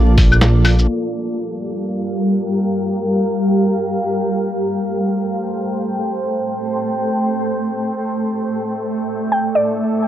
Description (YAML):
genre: future garage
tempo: free time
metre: none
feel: none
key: G dorian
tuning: A4 = 440 Hz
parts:
  - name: granular cloud pad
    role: sustained chords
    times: 0.0-10.1 s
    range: G3 to G5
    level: -18 LUFS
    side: equal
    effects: built-in reverb, sidechain pumping
  - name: dark detuned saw bass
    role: bass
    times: 0.0-0.9 s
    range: Bb1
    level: -12 LUFS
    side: equal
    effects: transformer saturation, sidechain pumping
  - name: lo-fi sampler-style drum kit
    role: drums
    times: 0.2-0.9 s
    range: claves, hi-hat, shaker, snare drum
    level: -18 LUFS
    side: left 1 dB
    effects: none
  - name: mallet-like synth pluck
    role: melody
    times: 9.3-9.8 s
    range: D5 to G5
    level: -17 LUFS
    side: equal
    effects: chorus, analog delay
room: light reverb, digital ambience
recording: dry, gritty hardware recording, vinyl crackle, low-pass filter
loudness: -16 LUFS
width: side -11 dB against mid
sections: 0.9-10.1 A section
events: band accent 0.4; filter sweep 0.9-10.1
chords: 0.0 Bbmaj7; 0.9 Gm7; 4.6 Am7; 8.4 Dsus2/A